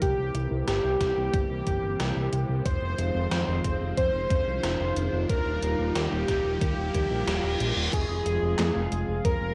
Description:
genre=synthwave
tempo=91 BPM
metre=4/4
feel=straight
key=F minor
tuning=A4 = 440 Hz
part: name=soft supersaw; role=melody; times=0.0-9.5 s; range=G4 to C5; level=-34 LUFS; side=equal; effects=cassette tape, analog delay
part: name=FM electric piano with soft pad layer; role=second line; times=0.0-9.5 s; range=G4 to C5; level=-35 LUFS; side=equal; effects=chorus, tremolo, cassette tape, analog delay
part: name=lush unison pad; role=sustained chords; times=0.0-9.5 s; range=C3 to G4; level=-35 LUFS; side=equal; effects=chorus, sidechain pumping, cassette tape
part: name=fat analog bass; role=bass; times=0.0-9.5 s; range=Eb1 to F2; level=-32 LUFS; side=equal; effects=sidechain pumping
part: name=electronic kick drum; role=drums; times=0.0-9.4 s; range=none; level=-31 LUFS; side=equal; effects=overdrive, cassette tape
part: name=gated 80s digital drum machine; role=drums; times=0.0-9.4 s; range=crash cymbal, handclaps, hi-hat, snare drum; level=-36 LUFS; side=equal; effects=gated reverb, gated reverb snare, overdrive, high-pass filter on hats, cassette tape, high-pass filter on snare, high-pass filter on cymbals, high-pass filter on room
part: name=riser and reverse cymbal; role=sound effects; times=1.5-7.9 s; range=none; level=-40 LUFS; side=equal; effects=none
room=moderate studio reverb, RT60 0.6 s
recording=home recording on cassette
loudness=-27 LUFS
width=mono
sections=0.0-7.9 A section; 7.9-9.5 B section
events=riser 1.5-7.9; reverse cymbal 6.6-7.9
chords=0.0 C7; 2.7 Fm7; 5.3 Ebadd9; 7.9 Fm

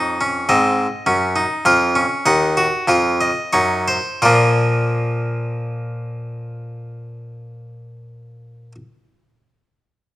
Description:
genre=classical, baroque-style 3-part fugue for harpsichord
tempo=44-54 BPM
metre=4/4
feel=straight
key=unclear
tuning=A4 = 441 Hz
part: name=harpsichord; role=solo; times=0.0-8.8 s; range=Eb2 to Gb5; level=-16 LUFS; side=equal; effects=none
room=light reverb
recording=close, detailed microphones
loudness=-15 LUFS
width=side -16 dB against mid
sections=0.0-4.2 A section; 4.2-9.7 B section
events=slowing down 0.0-4.2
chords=0.0 Dbmaj9/F; 1.7 F5; 4.2 Bb

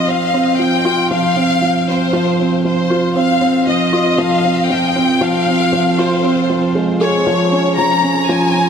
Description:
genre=electronica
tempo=117 BPM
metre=4/4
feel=straight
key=F minor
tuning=A4 = 441 Hz
part: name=rich chamber violin section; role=melody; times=0.0-8.7 s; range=C5 to Bb5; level=-16 LUFS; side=left 2 dB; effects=tape echo
part: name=felt-muted upright piano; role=riff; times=0.0-8.7 s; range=F3 to Ab4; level=-14 LUFS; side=right 1 dB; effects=none
room=wet huge ambient reverb, RT60 6.0 s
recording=none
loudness=-12 LUFS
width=side -7 dB against mid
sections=0.0-8.7 A section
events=build-up 0.0-8.7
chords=0.0 F5; 7.3 Db

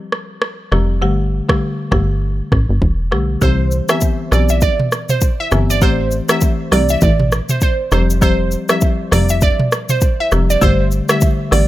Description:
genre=afrobeats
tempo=100 BPM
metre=4/4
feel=swing 58% on 16ths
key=C major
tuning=A4 = 440 Hz
part: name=afro-pop drum kit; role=drums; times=0.1-11.7 s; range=hi-hat, kick drum, rim click, shaker, toms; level=-16 LUFS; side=equal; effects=none
part: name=folk marimba with medium hard mallets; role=accompaniment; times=0.7-11.7 s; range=D3 to G4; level=-20 LUFS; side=left 3 dB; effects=none
part: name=plucky analog bass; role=bass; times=0.7-11.7 s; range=E1 to C2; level=-16 LUFS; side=equal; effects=none
part: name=glassy wavetable pluck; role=melody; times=3.4-11.7 s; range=C5 to E5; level=-19 LUFS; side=right 3 dB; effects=chorus, tape echo
room=little or no reverb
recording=none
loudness=-13 LUFS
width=side -15 dB against mid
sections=0.0-3.4 A section; 3.4-11.7 B section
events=none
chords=0.0 Fsus2; 1.0 Gsus2; 3.4 Cmaj7; 5.8 Am7; 7.9 Fsus2; 10.6 Gsus2

